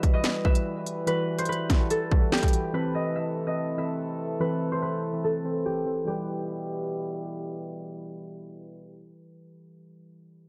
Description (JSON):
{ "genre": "hip hop, drill", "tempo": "144 BPM", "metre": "4/4", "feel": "half-time", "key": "E minor", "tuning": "A4 = 441 Hz", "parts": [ { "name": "concert harp", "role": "melody", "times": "0.0-8.4 s", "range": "G4 to E5", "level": "-34 LUFS", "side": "equal", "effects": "low-pass filter" }, { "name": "soft electric-piano-like synth keys", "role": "accompaniment", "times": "0.0-10.5 s", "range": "E3 to C5", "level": "-34 LUFS", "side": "equal", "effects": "chorus, low-pass filter" }, { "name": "warm French horn section", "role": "sustained chords", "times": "0.0-9.2 s", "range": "B2 to B4", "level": "-38 LUFS", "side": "equal", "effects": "low-pass filter" }, { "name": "drill drum kit", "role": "drums", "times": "0.0-2.6 s", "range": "hi-hat, kick drum, snare drum", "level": "-25 LUFS", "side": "equal", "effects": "none" } ], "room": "little or no reverb", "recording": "dark, warm production", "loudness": "-28 LUFS", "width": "mono", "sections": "0.0-6.1 A section; 6.1-9.4 B section", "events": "filter sweep 0.0-6.1", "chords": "0.0 Emadd9; 2.7 Amadd9; 6.1 Em" }